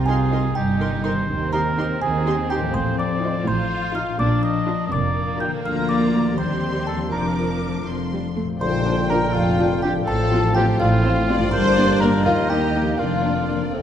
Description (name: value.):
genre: cinematic, playful, whimsical film cue.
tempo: 82 BPM (dotted quarters).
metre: 6/8.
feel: straight.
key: Bb major.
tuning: A4 = 440 Hz.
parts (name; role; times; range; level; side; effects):
music box; melody; 0.0-13.7 s; F5 to G6; -29 LUFS; right 3 dB; none.
rich studio violin section; second line; 0.0-13.8 s; Bb3 to G5; -30 LUFS; left 1 dB; none.
concert harp; arpeggios; 0.0-13.8 s; G2 to Eb5; -27 LUFS; left 8 dB; none.
dark studio cello section; bass; 0.0-13.8 s; D2 to Eb3; -26 LUFS; right 2 dB; none.
rich studio double bass section; bass; 0.0-13.8 s; F1 to Eb2; -26 LUFS; right 2 dB; none.
rich studio violin section; melody; 0.1-13.7 s; F4 to D6; -29 LUFS; left 3 dB; none.
warm oboe; second line; 0.1-13.7 s; F4 to G5; -27 LUFS; right 1 dB; none.
warm studio viola section; accompaniment; 0.1-13.8 s; F3 to Bb4; -28 LUFS; right 1 dB; none.
mellow clarinet; second line; 8.6-13.8 s; C4 to F4; -29 LUFS; left 2 dB; none.
mellow hollow large flute ensemble; second line; 8.6-13.7 s; F5 to C6; -29 LUFS; left 2 dB; none.
mellow bassoon; accompaniment; 8.6-13.8 s; A3 to D4; -28 LUFS; equal; none.
tam-tam; percussion; 8.6-10.5 s; none; -32 LUFS; left 2 dB; none.
mellow French horn section; sustained chords; 8.9-13.6 s; Bb3 to F4; -28 LUFS; left 3 dB; none.
room: moderate scoring stage reverb, RT60 2.1 s.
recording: dark, warm production.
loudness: -18 LUFS.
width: side -9 dB against mid.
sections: 0.0-8.6 A section; 8.6-13.8 B section.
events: band accent 8.6-9.1.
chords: 0.0 Cm7; 1.3 Cm/Eb; 2.7 F7/A; 4.2 Bb; 5.6 Bb/D; 6.4 Cm/Eb; 7.1 Bb/F; 7.9 F; 8.6 Bb; 10.1 F/A; 11.5 Gm; 12.3 Eb; 13.0 Bb/F.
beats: 0.56 | 1.29 2.02 | 2.75 3.47 | 4.20 4.92 | 5.65 6.38 | 7.12 7.87 | 8.61 9.34 | 10.07 10.80 | 11.52 12.25 | 12.99 13.73.